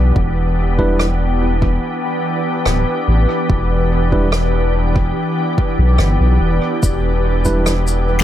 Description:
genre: ambient dub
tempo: 72 BPM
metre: 4/4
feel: straight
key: E minor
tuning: A4 = 440 Hz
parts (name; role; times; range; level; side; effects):
- soft additive organ-like pad; sustained chords; 0.0-8.2 s; E3 to D5; -18 LUFS; equal; ensemble chorus, built-in reverb, vintage 12-bit sampler grit
- round analog bass; bass; 0.0-8.2 s; D1 to B1; -16 LUFS; equal; none
- electronic kick drum; drums; 0.2-7.6 s; none; -18 LUFS; equal; overdrive
- overdriven tine electric piano; stabs; 0.8-7.7 s; G3 to B4; -23 LUFS; right 2 dB; dub echo
- rim click and shaker; drums; 1.0-8.0 s; none; -26 LUFS; equal; dub echo
room: light reverb, small room ambience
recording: none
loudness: -14 LUFS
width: side -12 dB against mid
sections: 0.0-8.2 A section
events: none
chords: 0.0 Em7

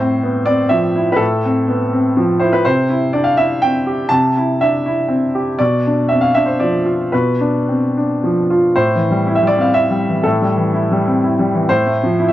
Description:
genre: neoclassical minimalist piano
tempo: 110-127 BPM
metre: 3/4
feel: rubato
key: A minor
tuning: A4 = 440 Hz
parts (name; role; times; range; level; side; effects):
- clear baby grand piano; solo; 0.0-12.3 s; A2 to A5; -13 LUFS; equal; none
room: moderate booth ambience, RT60 0.2 s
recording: none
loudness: -13 LUFS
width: side -14 dB against mid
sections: 0.0-8.7 A section; 8.7-12.3 A section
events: none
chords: 0.0 Fmaj7/A; 2.6 C6; 5.6 Bdim; 8.7 Am7; 11.7 Fmaj7/A

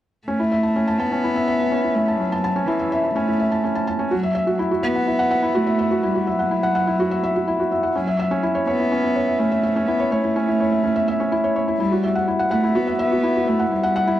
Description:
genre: electronica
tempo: 125 BPM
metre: 4/4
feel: straight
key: unclear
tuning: A4 = 439 Hz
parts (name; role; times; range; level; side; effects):
- warm cello; melody; 0.3-14.2 s; E3 to B3; -22 LUFS; equal; none
- felt-muted upright piano; riff; 0.3-14.2 s; C#4 to A5; -20 LUFS; equal; none
room: moderate huge ambient reverb, RT60 8.1 s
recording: dark, warm production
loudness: -18 LUFS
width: side -13 dB against mid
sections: 0.3-14.2 A section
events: none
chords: 0.3 A; 4.1 Esus2; 8.0 F#m7 (rootless); 11.8 Emadd9

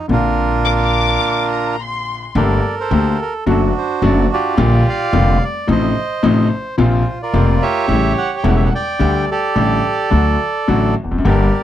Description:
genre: tango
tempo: 108 BPM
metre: 4/4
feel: rubato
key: unclear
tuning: A4 = 440 Hz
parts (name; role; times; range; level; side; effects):
- bandoneon; melody; 0.0-11.6 s; D4 to G5; -18 LUFS; right 3 dB; none
- warm concert grand piano; accompaniment; 0.1-11.5 s; E1 to G4; -17 LUFS; left 4 dB; none
- upright bass; bass; 0.1-11.5 s; E1 to D2; -17 LUFS; right 1 dB; none
- dark studio violin section; second line; 0.7-2.4 s; Bb5 to D6; -21 LUFS; left 6 dB; none
room: light reverb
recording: dry, close 1970s-style studio recording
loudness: -13 LUFS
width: side -11 dB against mid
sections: 0.0-2.4 A section; 2.4-11.6 B section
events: break 1.2-2.4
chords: 0.1 Bbadd9; 2.4 Gmadd9; 3.5 D/F#; 4.6 Bb6; 5.7 F7/A; 6.8 Bbsus2; 7.9 A7; 9.0 Dsus4; 10.1 D

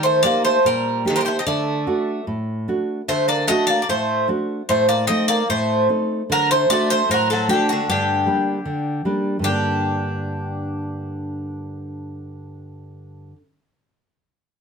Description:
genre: greek folk, Greek bouzouki band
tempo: 151 BPM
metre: 4/4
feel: straight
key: G harmonic minor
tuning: A4 = 440 Hz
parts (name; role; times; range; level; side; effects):
- Greek bouzouki; melody; 0.0-13.4 s; F#4 to Eb5; -20 LUFS; equal; plate reverb
- Greek bouzouki; second line; 0.0-13.4 s; D3 to D4; -25 LUFS; equal; none
- nylon-string guitar; accompaniment; 0.0-13.4 s; G2 to G4; -24 LUFS; right 1 dB; none
room: moderate small room reverb, RT60 0.6 s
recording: none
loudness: -18 LUFS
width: side -5 dB against mid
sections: 0.0-9.4 A section; 9.4-12.6 B section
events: speeding up 0.0-12.6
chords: 0.0 Eb; 1.5 D; 4.7 Adim; 6.3 D; 7.9 Gm

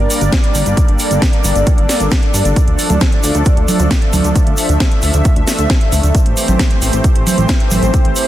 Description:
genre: uplifting trance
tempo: 134 BPM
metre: 4/4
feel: straight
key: D minor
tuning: A4 = 442 Hz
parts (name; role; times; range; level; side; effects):
- lush unison pad; sustained chords; 0.0-8.3 s; E3 to E5; -18 LUFS; equal; chorus, sidechain pumping
- plucky analog bass; bass; 0.0-8.1 s; G1 to G2; -15 LUFS; equal; sidechain pumping
- house drum kit; drums; 0.1-8.3 s; congas, hi-hat, snare drum; -19 LUFS; right 2 dB; studio reverb
- tube shaker; percussion; 0.1-8.2 s; none; -24 LUFS; right 2 dB; none
- electronic kick drum; drums; 0.3-8.0 s; none; -13 LUFS; equal; studio reverb
room: light reverb, digital ambience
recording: dense, heavily limited modern master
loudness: -11 LUFS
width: side -13 dB against mid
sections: 0.0-8.3 A section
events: none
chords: 0.0 Gm; 2.6 Dm; 6.1 Am7

